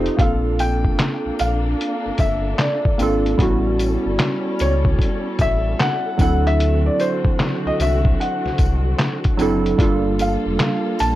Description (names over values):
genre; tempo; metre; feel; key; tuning
lo-fi hip hop; 75 BPM; 4/4; swing 65% on 16ths; unclear; A4 = 438 Hz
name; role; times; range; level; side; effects
felt-muted upright piano; melody; 0.0-11.2 s; C5 to A5; -24 LUFS; equal; low-pass filter, tape echo
warm analog keys; accompaniment; 0.0-11.2 s; F#3 to C5; -22 LUFS; right 2 dB; chorus, low-pass filter
warm studio string section; sustained chords; 0.0-11.2 s; D3 to A4; -29 LUFS; left 2 dB; low-pass filter
sub bass with octave; bass; 0.0-11.2 s; F1 to D2; -21 LUFS; equal; none
lo-fi sampler-style drum kit; drums; 0.1-11.2 s; handclaps, hi-hat, kick drum, snare drum; -19 LUFS; equal; none
tambourine; percussion; 0.6-11.2 s; none; -40 LUFS; left 6 dB; none
room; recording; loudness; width
light reverb; cassette tape; -16 LUFS; side -15 dB against mid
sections
0.0-11.2 A section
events
none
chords
0.2 Bbmaj7; 3.4 A13; 6.2 D7; 9.8 Gm9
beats
| 0.19 0.99 1.79 2.59 | 3.39 4.19 4.99 5.79 | 6.59 7.39 8.19 8.99 | 9.79 10.59